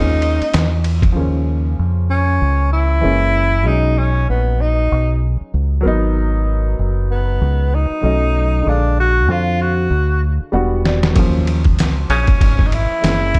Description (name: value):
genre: hip hop, jazz-hop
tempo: 96 BPM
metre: 4/4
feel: swing 58% on 16ths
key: unclear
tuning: A4 = 440 Hz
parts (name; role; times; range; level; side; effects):
- breathy tenor saxophone; melody; 0.0-13.4 s; B3 to F#4; -21 LUFS; equal; slapback echo
- dark grand piano; accompaniment; 0.0-13.4 s; C#3 to F#5; -25 LUFS; equal; none
- deep dub fingered electric bass; bass; 0.0-13.4 s; E1 to E#2; -19 LUFS; equal; none
- trip hop sampler-style drum kit; drums; 0.2-1.2, 10.9-13.4 s; hi-hat, kick drum, ride cymbal, snare drum; -18 LUFS; equal; none
room: digital ambience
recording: dark, warm production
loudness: -16 LUFS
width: mono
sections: 0.0-1.2 A section; 1.2-13.4 B section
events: drum fill 9.9-11.2; grand piano fill 10.2-11.2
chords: 0.0 D#9sus4; 1.2 D#sus2; 3.0 F#7; 3.7 B69; 5.8 G#m9; 8.0 B9; 8.7 A#7b13; 10.5 Em9; 11.2 D#m9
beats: 0.54 | 1.16 1.79 2.41 3.04 | 3.66 4.29 4.91 5.54 | 6.16 6.79 7.41 8.04 | 8.66 9.29 9.91 10.54 | 11.16 11.79 12.41 13.04